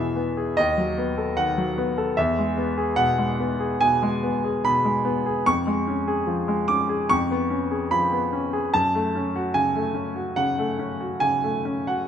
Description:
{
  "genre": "classical, romantic character piece for solo piano",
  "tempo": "73 BPM",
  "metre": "4/4",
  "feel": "rubato",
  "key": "F# minor from 5.5 s",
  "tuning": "A4 = 440 Hz",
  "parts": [
    { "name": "clear grand piano", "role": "solo", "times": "0.0-12.1 s", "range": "D#2 to D6", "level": "-21 LUFS", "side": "equal", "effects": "none" }
  ],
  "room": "moderate concert hall reverb, RT60 1.7 s",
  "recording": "close, detailed microphones",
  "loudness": "-21 LUFS",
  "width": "side -8 dB against mid",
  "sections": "0.0-12.1 A section",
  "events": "none",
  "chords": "0.0 E; 0.6 B7/D#; 2.2 E; 5.5 C#/E#; 7.1 C#7/E#; 8.7 F#m",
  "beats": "0.57 1.37 | 2.17 2.98 3.81 4.64 | 5.45 6.27 7.11 7.92 | 8.74 9.55 10.38 11.21"
}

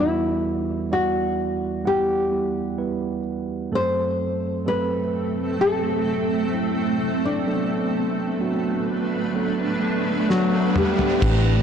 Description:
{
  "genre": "pop ballad",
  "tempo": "64 BPM",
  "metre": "4/4",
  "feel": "straight",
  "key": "unclear",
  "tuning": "A4 = 438 Hz",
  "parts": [
    { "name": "nylon-string guitar", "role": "melody", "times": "0.0-11.6 s", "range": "F#3 to C5", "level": "-24 LUFS", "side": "left 2 dB", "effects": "none" },
    { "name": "mellow tine electric piano", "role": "accompaniment", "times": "0.0-11.6 s", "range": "E2 to F#5", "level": "-26 LUFS", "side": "right 4 dB", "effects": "none" },
    { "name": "granular cloud pad", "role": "sustained chords", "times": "4.8-11.6 s", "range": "A3 to B5", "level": "-25 LUFS", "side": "right 1 dB", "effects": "built-in reverb" },
    { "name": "riser", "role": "sound effects", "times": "8.6-11.2 s", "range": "none", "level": "-32 LUFS", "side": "equal", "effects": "none" },
    { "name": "damped 70s drum kit", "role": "drums", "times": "10.3-11.4 s", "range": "crash cymbal, kick drum, snare drum, toms", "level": "-23 LUFS", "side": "equal", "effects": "none" },
    { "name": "vintage muted fingered electric bass", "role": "bass", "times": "11.2-11.6 s", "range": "A1", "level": "-19 LUFS", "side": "equal", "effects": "none" }
  ],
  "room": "moderate lush hall reverb, RT60 2.7 s",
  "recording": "blown-out, overdriven recording, overdrive",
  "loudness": "-20 LUFS",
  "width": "side -8 dB against mid",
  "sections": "0.0-11.2 A section",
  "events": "riser 8.6-11.2; tine electric piano fill 9.8-11.2; drum fill 10.3-11.2",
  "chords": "0.0 Em; 3.7 F#dim; 7.5 Bm7",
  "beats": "0.91 1.85 2.79 | 3.72 4.66 5.60 6.54 | 7.47 8.41 9.35 10.29 | 11.22"
}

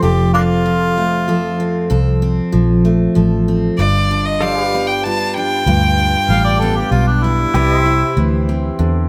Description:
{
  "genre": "honky-tonk and classic country",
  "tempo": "96 BPM",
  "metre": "3/4",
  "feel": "straight",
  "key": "unclear",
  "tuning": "A4 = 441 Hz",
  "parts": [
    { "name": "warm harmonica", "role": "second line", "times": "0.0-2.2, 6.3-8.4 s", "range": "Bb3 to F5", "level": "-21 LUFS", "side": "equal", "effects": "none" },
    { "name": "picked steel-string acoustic guitar", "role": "accompaniment", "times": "0.0-9.1 s", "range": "F2 to A4", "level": "-20 LUFS", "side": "equal", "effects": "none" },
    { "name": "pedal steel guitar", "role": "sustained chords", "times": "0.0-9.1 s", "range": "G4 to F5", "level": "-27 LUFS", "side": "equal", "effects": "none" },
    { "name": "vintage muted fingered electric bass", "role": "bass", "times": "0.0-9.1 s", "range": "F1 to E2", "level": "-19 LUFS", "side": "equal", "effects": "none" },
    { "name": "clear fiddle", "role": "melody", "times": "3.8-7.2 s", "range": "D5 to A5", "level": "-20 LUFS", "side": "equal", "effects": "none" }
  ],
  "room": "light reverb",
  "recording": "none",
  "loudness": "-15 LUFS",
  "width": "mono",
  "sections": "0.0-9.1 A section",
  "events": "none",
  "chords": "0.0 F; 3.8 G7; 7.5 C",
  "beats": "| 0.03 0.66 1.28 | 1.91 2.53 3.16 | 3.79 4.41 5.04 | 5.66 6.29 6.91 | 7.54 8.16 8.79"
}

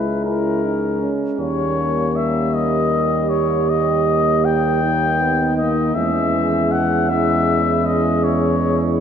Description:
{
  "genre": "classical, hymn-like piece for brass band",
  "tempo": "52 BPM (dotted quarters)",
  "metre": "12/8",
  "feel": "rubato",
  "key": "unclear",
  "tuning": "A4 = 444 Hz",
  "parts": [
    { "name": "mellow flugelhorn", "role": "melody", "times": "0.0-8.8 s", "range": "A#4 to G5", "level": "-21 LUFS", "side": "left 4 dB", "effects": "none" },
    { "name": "mellow French horn section", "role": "second line", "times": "0.0-9.0 s", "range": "C#4 to G4", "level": "-24 LUFS", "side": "right 7 dB", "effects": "none" },
    { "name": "clear euphonium", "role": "accompaniment", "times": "0.0-9.0 s", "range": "E3 to G#3", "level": "-25 LUFS", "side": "right 1 dB", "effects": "none" },
    { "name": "mellow trombone section", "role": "accompaniment", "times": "0.0-9.0 s", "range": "G#3 to E4", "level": "-24 LUFS", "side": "left 1 dB", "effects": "none" },
    { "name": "warm tuba", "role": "bass", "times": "0.0-9.0 s", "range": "C#2 to E2", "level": "-22 LUFS", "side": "right 1 dB", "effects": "none" }
  ],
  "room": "wet church reverb, RT60 3.7 s",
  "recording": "none",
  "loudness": "-16 LUFS",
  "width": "side -8 dB against mid",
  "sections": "0.0-9.0 A section",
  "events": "none",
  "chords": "0.0 A#dim/C#; 1.4 D#7; 6.0 E",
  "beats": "0.25 | 1.39 2.54 3.69 4.84 | 5.96 7.11 8.26"
}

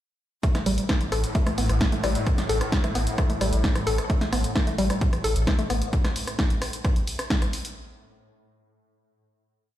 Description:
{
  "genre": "driving peak-time techno",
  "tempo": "131 BPM",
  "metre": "4/4",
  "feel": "straight",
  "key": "unclear",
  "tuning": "A4 = 435 Hz",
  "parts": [
    { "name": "woody wave-folded pluck", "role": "riff", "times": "0.4-5.8 s", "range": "G3 to A4", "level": "-28 LUFS", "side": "left 1 dB", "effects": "chorus, tube saturation, sidechain pumping, ping-pong delay" },
    { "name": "swarming drone", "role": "drone", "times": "0.8-6.0 s", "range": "A2", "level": "-33 LUFS", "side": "equal", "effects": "built-in reverb, sidechain pumping" },
    { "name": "electronic kick drum", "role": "drums", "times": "0.4-7.4 s", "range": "none", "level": "-25 LUFS", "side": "equal", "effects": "none" },
    { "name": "punchy analog drum machine", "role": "drums", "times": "0.4-7.7 s", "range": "hi-hat, rim click, snare drum", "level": "-29 LUFS", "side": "equal", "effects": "sidechain pumping on hats" },
    { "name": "saturated sub bass", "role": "bass", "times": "0.5-5.8 s", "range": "A1", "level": "-27 LUFS", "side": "equal", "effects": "tube saturation, sidechain pumping, low-pass filter" }
  ],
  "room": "light reverb",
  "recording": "played on a big sound system in a bare room, stone room reverb",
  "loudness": "-22 LUFS",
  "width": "side -13 dB against mid",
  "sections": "0.4-7.8 drop",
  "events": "drop 0.4-7.8",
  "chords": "none",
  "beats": "| 0.43 0.89 1.35 1.81 | 2.27 2.72 3.18 3.64 | 4.10 4.55 5.01 5.47 | 5.93 6.39 6.84 7.30"
}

